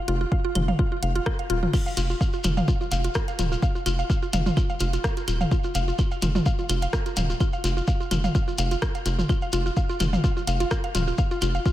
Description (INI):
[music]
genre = minimal techno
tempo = 127 BPM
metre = 4/4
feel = swing 55% on 16ths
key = unclear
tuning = A4 = 441 Hz
[part]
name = mallet-like synth pluck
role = riff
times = 0.1-11.7 s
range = F4 to F5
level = -29 LUFS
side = equal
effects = chorus, sidechain pumping, tape echo
[part]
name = rubbery square bass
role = bass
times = 0.1-11.6 s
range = Eb1 to F1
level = -25 LUFS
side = equal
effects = sidechain pumping
[part]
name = techno drum kit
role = drums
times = 0.1-11.5 s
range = crash cymbal, hi-hat, rim click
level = -33 LUFS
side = equal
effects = overdrive
[part]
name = electronic kick drum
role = drums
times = 0.3-11.7 s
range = none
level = -24 LUFS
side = equal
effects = none
[part]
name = electronic toms and claves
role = percussion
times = 0.6-11.5 s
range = none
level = -30 LUFS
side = equal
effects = overdrive, ping-pong delay
[part]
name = shekere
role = percussion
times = 1.7-11.7 s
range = none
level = -35 LUFS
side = left 3 dB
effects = none
[sound]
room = light reverb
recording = none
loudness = -22 LUFS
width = side -14 dB against mid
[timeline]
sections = 0.0-11.7 A section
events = none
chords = none